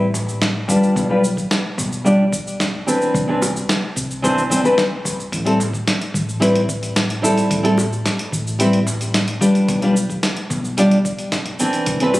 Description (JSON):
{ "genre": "sunset chillout", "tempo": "110 BPM", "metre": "4/4", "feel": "straight", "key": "unclear", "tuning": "A4 = 440 Hz", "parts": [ { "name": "nylon-string guitar", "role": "accompaniment", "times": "0.0-12.1 s", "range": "E3 to D5", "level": "-17 LUFS", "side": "equal", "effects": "auto-pan, low-pass filter, ping-pong delay" }, { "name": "woody fretless electric bass", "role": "bass", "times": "0.0-12.2 s", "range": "A1 to C2", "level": "-24 LUFS", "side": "equal", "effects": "none" }, { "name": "dusty soul sampler-style drum kit", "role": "drums", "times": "0.1-12.2 s", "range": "cabasa, hi-hat, snare drum, toms", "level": "-22 LUFS", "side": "equal", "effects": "none" }, { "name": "electronic kick drum", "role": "drums", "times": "0.7-12.0 s", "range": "none", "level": "-29 LUFS", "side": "equal", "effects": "none" }, { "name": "bongos", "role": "percussion", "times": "3.4-3.5, 7.8-7.9, 12.1-12.2 s", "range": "none", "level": "-25 LUFS", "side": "equal", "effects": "none" } ], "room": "moderate concert hall reverb, RT60 2.0 s, digital ambience", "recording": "recorded on a phone in the room, club reverb, compression", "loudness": "-16 LUFS", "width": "side -17 dB against mid", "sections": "0.0-12.2 A section", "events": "none", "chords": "0.0 N.C.; 0.7 G7/B; 3.1 Cmaj9; 5.3 Am7; 9.4 G7/B", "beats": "0.42 | 0.96 1.51 2.06 2.60 | 3.15 3.69 4.24 4.78 | 5.33 5.87 6.42 6.96 | 7.51 8.05 8.60 9.15 | 9.69 10.24 10.78 11.33 | 11.87" }